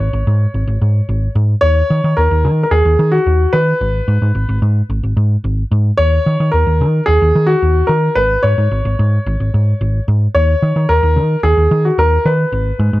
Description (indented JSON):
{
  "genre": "disco",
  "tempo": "110 BPM",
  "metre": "4/4",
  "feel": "straight",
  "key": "unclear",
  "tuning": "A4 = 443 Hz",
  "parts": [
    { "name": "warm concert grand piano", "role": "melody", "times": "0.0-13.0 s", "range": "F#4 to C#5", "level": "-16 LUFS", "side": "left 1 dB", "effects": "none" },
    { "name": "hollow-body short-scale picked electric bass", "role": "bass", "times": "0.0-13.0 s", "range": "G#1 to D#3", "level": "-13 LUFS", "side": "equal", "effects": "none" }
  ],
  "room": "small room ambience",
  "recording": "none",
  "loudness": "-12 LUFS",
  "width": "side -17 dB against mid",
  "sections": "0.0-13.0 A section",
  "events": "none",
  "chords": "0.0 G#sus4; 1.6 D#7(no3); 3.8 G#m; 6.0 D#5; 8.2 G#sus4; 10.3 D#5"
}